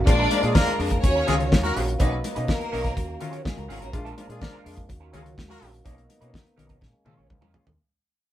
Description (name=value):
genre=disco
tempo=124 BPM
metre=4/4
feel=straight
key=Eb minor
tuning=A4 = 440 Hz
part: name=dark French horn section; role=sustained chords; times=0.0-7.8 s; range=B2 to Gb4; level=-34 LUFS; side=right 1 dB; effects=none
part: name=overdriven fingered electric bass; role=bass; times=0.0-7.8 s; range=Ab1 to B2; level=-29 LUFS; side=equal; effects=none
part: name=warm studio violin section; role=second line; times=0.1-3.9 s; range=Ab3 to D5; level=-27 LUFS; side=left 1 dB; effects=none
part: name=clear grand piano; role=accompaniment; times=0.1-7.7 s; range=Bb2 to F4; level=-33 LUFS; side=left 3 dB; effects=none
part: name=electric guitar at the edge of break-up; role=accompaniment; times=0.1-7.7 s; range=Gb3 to Db5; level=-38 LUFS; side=right 6 dB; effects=wah
part: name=damped 70s drum kit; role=drums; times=0.1-7.8 s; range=hi-hat, kick drum, snare drum, toms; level=-22 LUFS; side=equal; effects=none
part: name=clear horn section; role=stabs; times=0.3-5.7 s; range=Ab3 to Bb4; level=-28 LUFS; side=left 1 dB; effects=none
part: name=congas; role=percussion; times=0.3-7.5 s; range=none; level=-34 LUFS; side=left 3 dB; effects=none
room=moderate studio reverb, RT60 0.5 s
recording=band playing live in one room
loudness=-21 LUFS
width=side -12 dB against mid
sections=0.0-7.8 A section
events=fade-out 0.0-7.8; drum fill 6.8-7.8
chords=0.1 Bb7; 1.0 Ebm9; 2.0 Bmaj9; 3.0 Ebm9; 3.9 Bb7; 4.9 Ebm9; 5.9 Bmaj9; 6.8 Bbm7